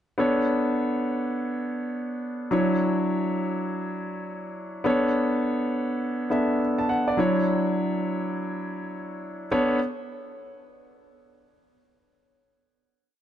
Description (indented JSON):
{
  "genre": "R&B",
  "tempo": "103 BPM",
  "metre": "4/4",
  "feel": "swing 63% on 16ths",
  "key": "B minor",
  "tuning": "A4 = 439 Hz",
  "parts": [
    { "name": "warm concert grand piano", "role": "solo", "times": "0.2-9.8 s", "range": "F#3 to A5", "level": "-24 LUFS", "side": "equal", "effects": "none" }
  ],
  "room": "light reverb",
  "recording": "dark, warm production, nothing above 10.8 kHz",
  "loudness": "-23 LUFS",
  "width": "side -10 dB against mid",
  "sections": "0.2-9.5 verse; 9.5-11.8 final chord",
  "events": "none",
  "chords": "0.2 Bm9; 2.5 Dmaj9; 4.8 Bm9; 7.2 Dmaj9; 9.5 Bm9",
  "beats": "| 0.19 0.77 1.35 1.94 | 2.52 3.10 3.69 4.27 | 4.85 5.43 6.01 6.60 | 7.18 7.76 8.35 8.93 | 9.51"
}